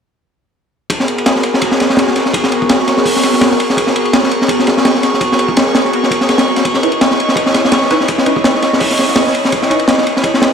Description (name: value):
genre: drum and bass, jungle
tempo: 167 BPM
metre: 4/4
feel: swing 55% on 16ths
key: G# minor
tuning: A4 = 439 Hz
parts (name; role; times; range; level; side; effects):
- airy breathy pad; sustained chords; 0.9-10.5 s; B3 to D#5; -16 LUFS; equal; chorus
- crunchy breakbeat drum kit; drums; 0.9-10.5 s; hi-hat, kick drum, ride cymbal, snare drum; -12 LUFS; equal; high-pass filter on kick, high-pass filter on cymbals, high-pass filter on hats, high-pass filter on snare, high-pass filter on room
- drifting glass-harmonics texture; texture; 2.1-10.5 s; C#6; -22 LUFS; right 1 dB; chorus, built-in reverb
- filtered dub chord stab; stabs; 6.8-9.8 s; C#4 to B4; -19 LUFS; right 1 dB; lush chorus, dub echo
room: moderate lush hall reverb, RT60 1.7 s, studio ambience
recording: played on a big sound system in a bare room, large studio reverb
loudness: -10 LUFS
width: side -7 dB against mid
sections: 0.9-10.5 A section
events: none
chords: 0.9 G#m9; 6.6 C#m9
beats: | 0.90 1.26 1.62 1.98 | 2.34 2.70 3.06 3.42 | 3.77 4.13 4.49 4.85 | 5.21 5.57 5.93 6.29 | 6.65 7.01 7.37 7.73 | 8.09 8.45 8.80 9.16 | 9.52 9.88 10.24